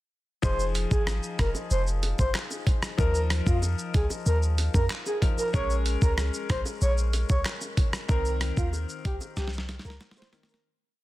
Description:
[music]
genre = dancehall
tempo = 94 BPM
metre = 4/4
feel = straight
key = F minor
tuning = A4 = 440 Hz
[part]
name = breathy flute-like synth lead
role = melody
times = 0.4-10.6 s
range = F4 to Db5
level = -32 LUFS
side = equal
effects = chorus, tremolo, ping-pong delay
[part]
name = bright concert grand piano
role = accompaniment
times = 0.4-10.7 s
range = Eb3 to Bb4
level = -36 LUFS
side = left 5 dB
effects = none
[part]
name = clean 808-style bass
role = bass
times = 0.4-10.0 s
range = F1 to F2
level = -26 LUFS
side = equal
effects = none
[part]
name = boom bap sampler-style drum kit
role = drums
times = 0.4-10.7 s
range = handclaps, hi-hat, kick drum, rim click, shaker, snare drum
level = -27 LUFS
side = equal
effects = soft clipping on snare
[part]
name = bongos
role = percussion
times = 1.1-10.5 s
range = none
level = -43 LUFS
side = right 3 dB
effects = none
[sound]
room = digital ambience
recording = dense, heavily limited modern master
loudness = -24 LUFS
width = side -17 dB against mid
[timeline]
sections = 0.4-10.6 chorus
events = fade-out 8.1-10.6; drum fill 9.4-10.6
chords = 0.4 Fm7; 3.0 Ebsus2; 5.5 Bbm7; 8.1 Cm7

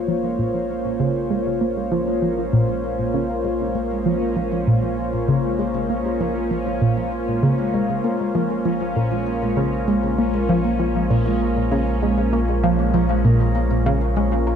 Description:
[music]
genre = ambient, sequencer-driven space music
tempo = 98 BPM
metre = 4/4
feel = straight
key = Bb minor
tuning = A4 = 439 Hz
[part]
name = sweeping resonant pad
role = sustained chords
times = 0.0-14.6 s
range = Bb3 to Db5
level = -23 LUFS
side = equal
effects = chorus
[part]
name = Celtic harp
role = arpeggios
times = 0.0-14.6 s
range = Bb2 to Bb4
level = -28 LUFS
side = moving between left 5 dB and right 4 dB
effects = auto-pan, tape echo
[part]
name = warm sub bass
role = bass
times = 0.0-14.6 s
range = Bb1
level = -27 LUFS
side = equal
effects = none
[part]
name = bubbling stepped-filter texture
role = texture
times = 0.9-14.6 s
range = Db4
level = -35 LUFS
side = right 2 dB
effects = chorus, built-in reverb
[part]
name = analog pluck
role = riff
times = 0.1-14.6 s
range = Bb2 to Bb3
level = -22 LUFS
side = equal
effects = chorus, phaser, tape echo
[sound]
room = moderate plate reverb, RT60 3.0 s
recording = dark, warm production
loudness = -18 LUFS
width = side -8 dB against mid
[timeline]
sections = 0.0-14.6 A section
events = fade-in on harp 0.0-14.6; fade-in on sub bass 0.0-14.6; fade-in on synth texture 0.0-14.6; filter sweep on synth arpeggio sound 0.0-14.6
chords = 0.0 Bbm

